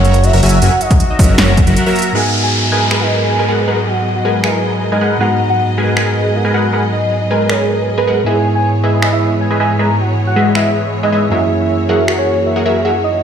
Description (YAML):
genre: future bass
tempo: 157 BPM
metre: 4/4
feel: half-time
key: G# minor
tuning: A4 = 440 Hz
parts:
  - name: warm velvety synth lead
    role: melody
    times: 0.0-13.2 s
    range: A#4 to A#5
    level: -18 LUFS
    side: equal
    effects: chorus, tremolo, sidechain pumping, ping-pong delay
  - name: concert harp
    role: arpeggios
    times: 0.0-3.9 s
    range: F#4 to E5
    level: -25 LUFS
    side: left 2 dB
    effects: sidechain pumping, digital delay
  - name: supersaw stab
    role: riff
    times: 0.0-12.9 s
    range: F#3 to A#5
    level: -16 LUFS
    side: equal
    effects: phaser, sidechain pumping, low-pass filter
  - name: fat analog bass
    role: bass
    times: 0.0-1.8 s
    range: F#1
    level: -11 LUFS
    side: equal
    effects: sidechain pumping
  - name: big-room dance drum kit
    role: drums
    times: 0.0-12.2 s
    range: finger snaps, hi-hat, snare drum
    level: -19 LUFS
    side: equal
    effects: overdrive
  - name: electronic kick drum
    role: drums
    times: 0.9-1.7 s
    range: none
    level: -11 LUFS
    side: equal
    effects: overdrive
  - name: tine electric piano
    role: accompaniment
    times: 2.1-13.2 s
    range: F#2 to A#5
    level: -17 LUFS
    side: right 1 dB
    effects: sidechain pumping
  - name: rich symphonic string section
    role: sustained chords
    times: 2.1-13.2 s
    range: G#2 to D#5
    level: -23 LUFS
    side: left 1 dB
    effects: sidechain pumping
  - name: downlifter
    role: sound effects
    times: 2.1-5.2 s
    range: none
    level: -20 LUFS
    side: equal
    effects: none
room: light reverb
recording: played on a big sound system in a bare room, stone room reverb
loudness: -11 LUFS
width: side -8 dB against mid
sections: 0.0-2.1 A section; 2.1-13.2 B section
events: drop 0.0-2.1; break 1.8-2.1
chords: 0.0 F#7; 2.1 G#m7; 8.3 C#m7/G#; 11.3 F#7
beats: 0.24 | 0.62 1.00 1.38 1.76 | 2.15 2.53 2.91 3.29 | 3.68 4.06 4.44 4.82 | 5.21 5.59 5.97 6.35 | 6.73 7.12 7.50 7.88 | 8.26 8.64 9.03 9.41 | 9.79 10.17 10.55 10.94 | 11.32 11.70 12.08 12.47 | 12.85